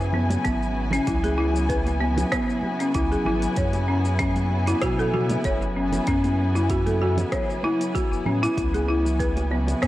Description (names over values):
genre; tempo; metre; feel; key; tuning
organic downtempo; 96 BPM; 4/4; swing 54% on 16ths; C# minor; A4 = 438 Hz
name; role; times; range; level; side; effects
warm studio string section; sustained chords; 0.0-9.9 s; C#3 to G#5; -27 LUFS; left 1 dB; sidechain pumping
warm sub bass; bass; 0.0-9.9 s; F#1 to B2; -25 LUFS; equal; sidechain pumping
afro-pop drum kit; drums; 0.0-9.9 s; hi-hat, rim click, shaker; -34 LUFS; equal; overdrive
folk marimba with hard mallets; arpeggios; 0.1-9.9 s; B3 to C#5; -25 LUFS; left 1 dB; low-pass filter, ping-pong delay
congas and bongos; percussion; 0.1-9.8 s; none; -33 LUFS; right 2 dB; none
electronic kick drum; drums; 0.5-9.9 s; none; -28 LUFS; equal; overdrive
room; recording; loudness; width
moderate lush hall reverb, RT60 2.0 s; worn, warbling old tape, cassette tape, warbly pitch drift; -21 LUFS; side -15 dB against mid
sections
0.0-9.9 A section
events
none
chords
0.0 C#m7; 3.6 F#7(no3); 8.6 C#m7